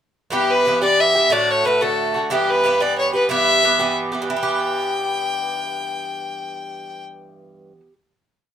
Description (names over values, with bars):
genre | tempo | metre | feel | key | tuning
celtic folk, Celtic jig | 121 BPM (dotted quarters) | 6/8 | straight | E minor | A4 = 440 Hz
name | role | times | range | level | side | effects
rich fiddle | melody | 0.3-7.0 s | G4 to G5 | -18 LUFS | left 2 dB | none
Irish bouzouki | accompaniment | 0.3-7.9 s | G2 to G4 | -23 LUFS | right 3 dB | none
room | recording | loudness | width
moderate small room reverb, RT60 0.5 s | minimal, uncompressed stereo recording | -16 LUFS | side -9 dB against mid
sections
0.3-4.3 A section; 4.3-6.3 final chord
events
none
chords
0.3 Em; 1.3 D; 2.3 Em